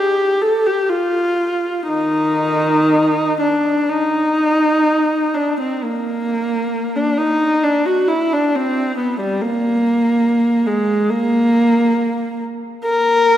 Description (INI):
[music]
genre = classical, free, expressive piece for unaccompanied viola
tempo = 60-74 BPM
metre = 4/4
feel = rubato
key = unclear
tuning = A4 = 440 Hz
[part]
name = dark viola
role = solo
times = 0.0-13.4 s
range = Eb3 to Bb4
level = -15 LUFS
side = equal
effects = none
[sound]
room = wet church reverb, RT60 3.2 s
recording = none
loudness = -15 LUFS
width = side -11 dB against mid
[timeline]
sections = 0.0-13.4 A section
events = none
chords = none